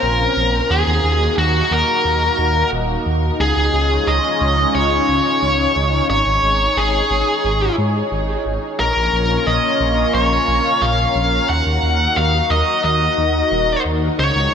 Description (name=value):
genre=synthwave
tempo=89 BPM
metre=4/4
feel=straight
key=unclear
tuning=A4 = 440 Hz
part: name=high-gain lead guitar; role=melody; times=0.0-14.5 s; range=Gb4 to Gb5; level=-17 LUFS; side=left 1 dB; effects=distortion, digital delay
part: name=lush unison pad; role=sustained chords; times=0.0-14.5 s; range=Ab3 to Eb5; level=-21 LUFS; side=equal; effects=chorus, phaser
part: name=dark detuned saw bass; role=bass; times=0.0-14.5 s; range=Eb1 to Ab2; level=-20 LUFS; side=equal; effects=none
room=moderate plate reverb, RT60 3.3 s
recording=bright 1980s-style digital production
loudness=-14 LUFS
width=side -7 dB against mid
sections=0.0-14.5 A section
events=none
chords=0.0 Bbmadd9; 0.7 Ebm; 3.4 Dbadd9; 6.1 Absus4; 8.8 Bbm; 11.5 Ebm